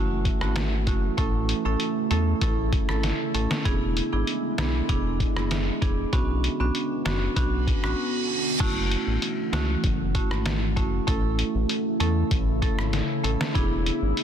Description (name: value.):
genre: dancehall.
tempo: 97 BPM.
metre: 4/4.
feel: straight.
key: F# minor.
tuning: A4 = 440 Hz.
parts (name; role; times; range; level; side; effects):
marimba with medium hard mallets; accompaniment; 0.0-14.2 s; A3 to A4; -28 LUFS; right 4 dB; sidechain pumping.
deep dark ambient pad; sustained chords; 0.0-14.2 s; C#3 to F#4; -31 LUFS; left 1 dB; chorus, built-in reverb, sidechain pumping.
round analog bass; bass; 0.0-14.1 s; E1 to E2; -26 LUFS; equal; none.
lo-fi sampler-style drum kit; drums; 0.3-14.2 s; crash cymbal, hi-hat, kick drum, rim click, snare drum; -27 LUFS; equal; none.
reverse cymbal; sound effects; 7.6-8.6 s; none; -30 LUFS; right 5 dB; none.
room: light reverb.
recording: dense, heavily limited modern master.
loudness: -22 LUFS.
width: side -9 dB against mid.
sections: 0.0-8.6 A section; 8.6-14.2 B section.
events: reverse cymbal 7.6-8.6; drums muted 8.0-8.6.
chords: 0.0 F#m7; 1.2 A; 3.7 E7; 6.1 Bmadd9; 8.6 F#m7; 11.1 A; 13.6 E7.